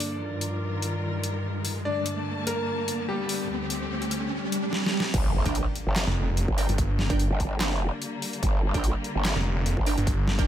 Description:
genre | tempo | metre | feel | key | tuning
heavy wobble dubstep | 146 BPM | 4/4 | swing 54% on 16ths, half-time | G minor | A4 = 439 Hz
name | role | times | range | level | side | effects
bright concert grand piano | melody | 0.0-4.7 s | G3 to D5 | -32 LUFS | left 2 dB | vintage 12-bit sampler grit, ping-pong delay
clear studio string section | sustained chords | 0.0-10.5 s | D2 to A5 | -33 LUFS | left 1 dB | sidechain pumping
dubstep drum kit | drums | 0.0-10.5 s | crash cymbal, handclaps, hi-hat, snare drum | -31 LUFS | left 1 dB | overdrive, small room ambience
riser, swell and impact | sound effects | 0.0-6.8 s | none | -33 LUFS | right 1 dB | none
growl bass | bass | 5.1-10.0 s | G1 to Bb1 | -27 LUFS | equal | chorus, overdrive
electronic kick drum | drums | 5.1-10.5 s | none | -27 LUFS | equal | overdrive, small room ambience
orchestra-hit-like synth stab | stabs | 5.5-10.5 s | D4 to G5 | -34 LUFS | right 5 dB | built-in reverb, ping-pong delay
snarling distorted saw bass | bass | 6.1-10.5 s | F1 to G1 | -25 LUFS | equal | distortion, overdrive
room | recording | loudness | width
light reverb | none | -24 LUFS | side -11 dB against mid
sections
0.0-5.1 A section; 5.1-10.5 B section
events
build-up 0.0-5.1; riser 0.0-4.7; filter sweep on string section 0.0-5.1; swell 4.3-5.1; drum fill 4.7-5.1; drop 5.1-10.5; impact 5.1-6.8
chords
0.2 Ebadd9/G; 1.9 Gmadd9; 3.5 Dsus4; 5.1 Gm

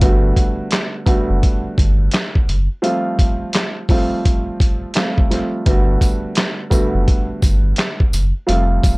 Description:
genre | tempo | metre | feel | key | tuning
hip hop, boom-bap hip-hop | 85 BPM | 4/4 | swing 63% on 16ths | G major | A4 = 440 Hz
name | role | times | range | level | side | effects
dark upright piano | accompaniment | 0.0-9.0 s | D3 to F#4 | -21 LUFS | right 1 dB | cassette tape, high-pass filter, low-pass filter
warm sub bass | bass | 0.0-9.0 s | E1 to G1 | -16 LUFS | equal | tube saturation
trip hop sampler-style drum kit | drums | 0.0-9.0 s | handclaps, hi-hat, kick drum, snare drum | -16 LUFS | equal | none
tambourine | percussion | 6.0-9.0 s | none | -32 LUFS | right 1 dB | none
room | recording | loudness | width
little or no reverb | dry, gritty hardware recording | -14 LUFS | side -25 dB against mid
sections
0.0-9.0 A section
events
none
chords
0.0 Gmaj7; 2.8 Fadd9; 5.7 Gmaj7

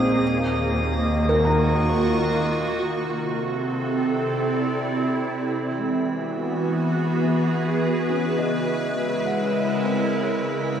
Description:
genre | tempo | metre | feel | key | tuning
ambient | 69 BPM | 3/4 | straight | unclear | A4 = 435 Hz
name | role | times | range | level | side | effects
evolving wavetable pad | sustained chords | 0.0-10.8 s | A2 to Db6 | -22 LUFS | equal | ensemble chorus, built-in reverb
felt-muted upright piano | arpeggios | 0.0-10.8 s | G#3 to Bb5 | -28 LUFS | equal | tape echo
rich studio double bass section | bass | 0.0-2.8 s | Bb1 to Eb2 | -26 LUFS | equal | none
drifting glass-harmonics texture | texture | 0.0-10.8 s | E4 to Eb6 | -31 LUFS | right 2 dB | chorus, built-in reverb
room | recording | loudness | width
wet concert hall reverb, RT60 2.4 s | none | -20 LUFS | side -8 dB against mid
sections
0.0-2.9 A section; 2.9-10.8 B section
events
fade-in on felt piano 2.9-10.8; fade-in on synth texture 2.9-10.8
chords
0.2 Ebm9; 2.9 C6; 5.5 E; 8.1 Dbm6

